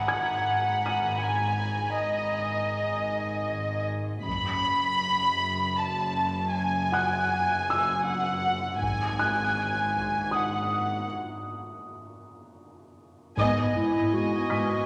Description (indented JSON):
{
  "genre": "cinematic, suspense film score",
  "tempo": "79 BPM",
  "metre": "3/4",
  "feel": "straight",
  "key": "unclear",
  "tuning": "A4 = 440 Hz",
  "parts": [
    { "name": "warm chamber violin section", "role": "melody", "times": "0.0-14.9 s", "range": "D#5 to B5", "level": "-30 LUFS", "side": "equal", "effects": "none" },
    { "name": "rich symphonic double bass section", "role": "bass", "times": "0.0-14.9 s", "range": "F#1 to G#1", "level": "-38 LUFS", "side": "equal", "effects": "none" },
    { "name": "warm symphonic cello section", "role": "bass", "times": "0.0-14.9 s", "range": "F#2 to G#2", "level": "-38 LUFS", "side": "equal", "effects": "none" },
    { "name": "felt-muted upright piano", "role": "texture", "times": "0.0-14.9 s", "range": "F#5 to D#7", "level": "-34 LUFS", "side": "equal", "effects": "none" },
    { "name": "warm symphonic violin section", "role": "texture", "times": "0.0-3.8 s", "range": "G#5 to B5", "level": "-40 LUFS", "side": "equal", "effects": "none" },
    { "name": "taiko ensemble", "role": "drums", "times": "4.3-14.9 s", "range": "none", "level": "-44 LUFS", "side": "equal", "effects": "none" },
    { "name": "warm symphonic violin section", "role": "second line", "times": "13.4-14.9 s", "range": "D#5", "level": "-32 LUFS", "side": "equal", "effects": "none" },
    { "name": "dark symphonic viola section", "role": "accompaniment", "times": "13.4-14.9 s", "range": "B3", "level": "-36 LUFS", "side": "equal", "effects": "none" },
    { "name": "smooth synth bass", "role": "riff", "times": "13.4-14.7 s", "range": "G#2 to G#3", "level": "-33 LUFS", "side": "equal", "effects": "none" },
    { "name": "mellow clarinet", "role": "second line", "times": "13.7-14.9 s", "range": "E4 to F#4", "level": "-28 LUFS", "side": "equal", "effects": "none" }
  ],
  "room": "wet concert hall reverb, RT60 2.2 s",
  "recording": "none",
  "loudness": "-27 LUFS",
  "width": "mono",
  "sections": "0.0-13.4 A section; 13.4-14.9 B section",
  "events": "break 11.1-13.4; band accent 13.4-14.1",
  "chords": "0.0 G#m7; 4.3 F#7(no3); 8.8 G#5; 13.4 G#m"
}